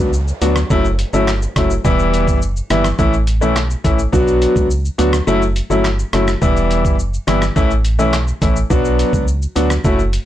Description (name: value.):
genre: dancehall.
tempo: 105 BPM.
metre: 4/4.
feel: straight.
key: unclear.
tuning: A4 = 439 Hz.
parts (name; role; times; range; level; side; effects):
clear grand piano; accompaniment; 0.0-10.0 s; E3 to F#4; -16 LUFS; left 1 dB; sidechain pumping.
organ-like FM bass; bass; 0.0-10.2 s; E1 to D2; -18 LUFS; right 1 dB; none.
downlifter; sound effects; 0.0-1.8 s; none; -37 LUFS; right 3 dB; none.
trip hop sampler-style drum kit; drums; 0.1-10.3 s; handclaps, hi-hat, kick drum, rim click, shaker; -19 LUFS; equal; none.
room: light reverb.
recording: blown-out, overdriven recording, overdrive.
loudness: -13 LUFS.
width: side -12 dB against mid.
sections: 0.0-10.3 A section.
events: kick muted 5.3-6.4.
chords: 0.0 Bm; 0.7 F#m7; 1.8 Em; 3.0 A; 4.1 Bm; 5.3 F#m7; 6.4 Em; 7.6 A; 8.7 Bm.